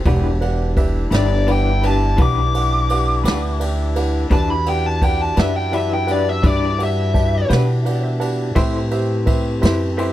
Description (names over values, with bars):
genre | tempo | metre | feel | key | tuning
slow blues | 56 BPM (dotted quarters) | 12/8 | straight | E minor | A4 = 436 Hz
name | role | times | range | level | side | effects
mellow tonewheel organ | sustained chords | 0.0-10.1 s | C4 to B4 | -27 LUFS | left 1 dB | slow rotary speaker
upright bass | bass | 0.0-10.1 s | E1 to B2 | -19 LUFS | equal | none
bright upright piano | accompaniment | 0.1-10.1 s | G4 to A5 | -26 LUFS | right 5 dB | none
electric guitar through a small old amp | accompaniment | 0.1-10.1 s | E3 to C5 | -25 LUFS | left 4 dB | tremolo
mellow horn section | sustained chords | 0.1-10.1 s | C3 to E4 | -31 LUFS | left 2 dB | none
jazz brush drum kit | drums | 0.1-10.1 s | kick drum, ride cymbal, snare drum | -22 LUFS | equal | none
smooth overdriven lead guitar | melody | 1.2-7.5 s | D5 to D6 | -22 LUFS | left 2 dB | none
room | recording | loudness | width
little or no reverb | dry, close 1970s-style studio recording | -16 LUFS | side -14 dB against mid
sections
0.0-10.1 A section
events
lead electric guitar solo 0.0-10.1; upright piano fill 7.5-8.6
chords
0.1 Em7; 8.6 Am7